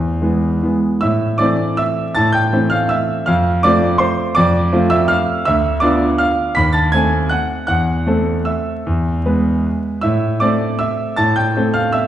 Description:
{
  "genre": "classical, piano waltz",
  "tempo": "147-174 BPM",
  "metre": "3/4",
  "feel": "rubato",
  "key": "A minor",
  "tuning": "A4 = 440 Hz",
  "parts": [
    { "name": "clear concert grand piano", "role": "solo", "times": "0.0-12.1 s", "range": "D2 to B6", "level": "-14 LUFS", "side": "equal", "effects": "none" }
  ],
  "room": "wet large studio reverb, RT60 1.3 s",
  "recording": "heard from further back in the room, vinyl crackle, nothing above 10.9 kHz",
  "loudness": "-14 LUFS",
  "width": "side -11 dB against mid",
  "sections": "0.0-1.0 A section; 1.0-12.1 B section",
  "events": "none",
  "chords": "0.0 E; 1.0 Am; 3.3 F; 5.5 Bdim/D; 6.6 D#dim7; 7.7 Am/E; 8.9 E; 10.0 Am"
}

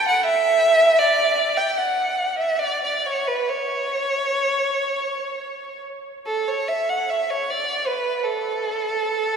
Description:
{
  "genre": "classical, free, expressive piece for unaccompanied violin",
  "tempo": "53-83 BPM",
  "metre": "3/4",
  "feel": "rubato",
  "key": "unclear",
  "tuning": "A4 = 440 Hz",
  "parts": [
    { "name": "rich violin", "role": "solo", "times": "0.0-9.4 s", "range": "A4 to G5", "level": "-19 LUFS", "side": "right 1 dB", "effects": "none" }
  ],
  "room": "wet cathedral reverb, RT60 4.9 s",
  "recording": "heard from further back in the room",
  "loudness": "-19 LUFS",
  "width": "side -6 dB against mid",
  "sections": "0.0-6.3 A section; 6.3-9.4 B section",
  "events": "none",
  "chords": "none"
}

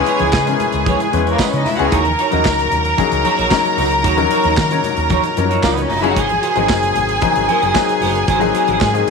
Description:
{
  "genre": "disco",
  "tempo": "113 BPM",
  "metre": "4/4",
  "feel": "straight",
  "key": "unclear",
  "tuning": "A4 = 441 Hz",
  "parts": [
    { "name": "clear studio string section", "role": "second line", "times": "0.0-9.1 s", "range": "A#3 to A#5", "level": "-17 LUFS", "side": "right 1 dB", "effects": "tape echo" },
    { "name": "warm grand piano", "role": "accompaniment", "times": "0.0-9.1 s", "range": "E#3 to C#5", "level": "-19 LUFS", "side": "left 13 dB", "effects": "none" },
    { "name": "semi-hollow electric guitar", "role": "accompaniment", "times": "0.1-9.0 s", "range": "D#4 to D#5", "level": "-23 LUFS", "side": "right 13 dB", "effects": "lush chorus" },
    { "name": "modern studio drum kit", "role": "drums", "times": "0.1-9.1 s", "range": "handclaps, hi-hat, kick drum, snare drum", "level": "-22 LUFS", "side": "right 3 dB", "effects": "none" },
    { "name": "hollow-body short-scale fingered electric bass", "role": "bass", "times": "0.2-9.0 s", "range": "F#1 to D#3", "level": "-22 LUFS", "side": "right 2 dB", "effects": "none" },
    { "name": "congas", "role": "percussion", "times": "0.2-9.1 s", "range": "none", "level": "-28 LUFS", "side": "left 9 dB", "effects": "none" },
    { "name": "tambourine", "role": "percussion", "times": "0.3-8.9 s", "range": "none", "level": "-33 LUFS", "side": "right 17 dB", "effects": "none" }
  ],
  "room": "moderate plate reverb, RT60 2.1 s",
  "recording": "1960s-style stereo with parts hard left and right",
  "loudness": "-13 LUFS",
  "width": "side -4 dB against mid",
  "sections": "0.0-9.1 A section",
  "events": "none",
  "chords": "0.0 C#m7; 1.9 D#m7; 6.2 G#9"
}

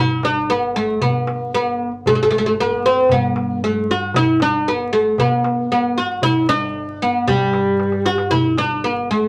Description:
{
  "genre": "Arabic maqam ensemble",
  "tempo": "115 BPM",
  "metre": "4/4",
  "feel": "straight",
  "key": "G maqam huzam",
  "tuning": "A4 = 444 Hz",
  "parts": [
    { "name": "oud", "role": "melody", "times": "0.0-9.3 s", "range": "G3 to F#4-50c", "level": "-19 LUFS", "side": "equal", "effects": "none" },
    { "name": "upright bass", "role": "bass", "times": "0.0-9.3 s", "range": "G1 to G2", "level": "-32 LUFS", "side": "equal", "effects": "none" },
    { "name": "darbuka", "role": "percussion", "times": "0.2-9.0 s", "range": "none", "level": "-25 LUFS", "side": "equal", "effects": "none" }
  ],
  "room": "light reverb",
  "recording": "vinyl crackle",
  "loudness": "-18 LUFS",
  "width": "mono",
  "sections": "0.0-9.3 A section",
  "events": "drum fill 7.8-8.3",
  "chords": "none"
}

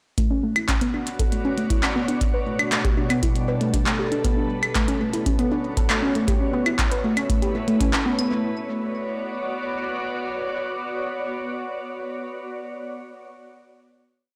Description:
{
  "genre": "IDM",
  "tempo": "118 BPM",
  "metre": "4/4",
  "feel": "straight",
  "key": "B minor",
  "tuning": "A4 = 439 Hz",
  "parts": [
    { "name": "glassy FM pad", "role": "sustained chords", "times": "1.0-12.5 s", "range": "B2 to D5", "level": "-31 LUFS", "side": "equal", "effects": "ensemble chorus, built-in reverb" },
    { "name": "warbly dusty pluck", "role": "arpeggios", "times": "0.2-8.6 s", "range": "A3 to B4", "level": "-27 LUFS", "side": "equal", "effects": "chorus, tape echo" },
    { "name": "electronic kick drum", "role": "drums", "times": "0.2-7.9 s", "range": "none", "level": "-26 LUFS", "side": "equal", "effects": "overdrive, studio ambience" },
    { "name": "glitchy drum kit", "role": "drums", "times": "0.2-8.3 s", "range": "claves, handclaps, hi-hat", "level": "-28 LUFS", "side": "equal", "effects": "studio ambience, tape echo" }
  ],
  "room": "moderate lush hall reverb, RT60 1.6 s",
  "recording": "blown-out, overdriven recording, overdrive",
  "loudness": "-23 LUFS",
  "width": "mono",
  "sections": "0.2-8.3 groove; 8.3-12.4 final chord",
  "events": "none",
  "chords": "0.2 Bm11; 2.2 Gadd9; 4.2 Bm9; 6.3 A9; 8.3 Bmadd9"
}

